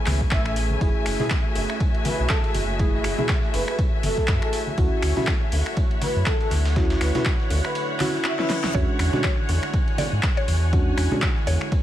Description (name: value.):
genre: deep house.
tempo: 121 BPM.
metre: 4/4.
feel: swing 57% on 16ths.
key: unclear.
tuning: A4 = 440 Hz.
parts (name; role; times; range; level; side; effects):
deep dark ambient pad; sustained chords; 0.0-11.8 s; D3 to C#5; -33 LUFS; right 3 dB; chorus, built-in reverb, sidechain pumping.
rich studio string section; texture; 0.0-11.8 s; D3 to G#5; -31 LUFS; left 1 dB; sidechain pumping.
sub bass with octave; bass; 0.1-11.6 s; F#1 to G#2; -23 LUFS; equal; sidechain pumping.
breakbeat sampler-style drum kit; drums; 0.1-11.8 s; hi-hat, ride cymbal, snare drum; -39 LUFS; right 2 dB; none.
deep house drum kit; drums; 0.1-11.7 s; finger snaps, handclaps, hi-hat, snare drum; -29 LUFS; equal; studio ambience.
congas and bongos; percussion; 0.1-11.6 s; none; -32 LUFS; left 2 dB; none.
electronic kick drum; drums; 0.2-11.8 s; none; -23 LUFS; equal; studio ambience.
breathy flute-like synth lead; melody; 0.3-8.5 s; A4 to E5; -32 LUFS; left 1 dB; lush chorus, dub echo.
deep mellow chord stab; stabs; 0.8-11.3 s; G#3 to B4; -28 LUFS; equal; chorus, sidechain pumping, dub echo.
reverse cymbal; sound effects; 8.0-8.7 s; none; -37 LUFS; left 6 dB; none.
mallet-like synth pluck; melody; 8.7-11.8 s; C#5 to D5; -32 LUFS; equal; chorus, vintage 12-bit sampler grit, dub echo.
room: little or no reverb.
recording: vinyl crackle.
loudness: -20 LUFS.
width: side -12 dB against mid.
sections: 0.0-11.8 A section.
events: reverse cymbal 8.0-8.7; drum fill 8.4-8.7.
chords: 0.0 Amaj7; 0.8 F#m9; 4.5 Dmaj9; 8.7 E13.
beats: 0.32 | 0.81 1.31 1.80 2.30 | 2.79 3.29 3.79 4.28 | 4.78 5.27 5.77 6.26 | 6.76 7.26 7.75 8.25 | 8.74 9.24 9.74 10.23 | 10.73 11.22 11.72.